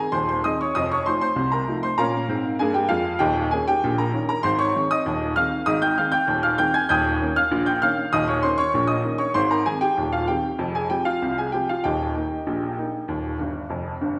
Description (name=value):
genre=ragtime piano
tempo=97 BPM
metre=2/4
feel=straight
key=Ab major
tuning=A4 = 441 Hz
part: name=clear upright piano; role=solo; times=0.0-14.2 s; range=Eb1 to Ab6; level=-23 LUFS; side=equal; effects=none
room=wet recital hall reverb, RT60 1.4 s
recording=recorded in a church or concert hall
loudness=-23 LUFS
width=mono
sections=0.0-14.2 A section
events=upright piano fill 13.4-14.2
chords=0.0 Ab; 0.7 F7; 2.0 Bbm; 3.2 Eb7; 4.4 Ab; 6.9 Eb7; 9.4 Ab; 10.6 Fm; 11.8 Eb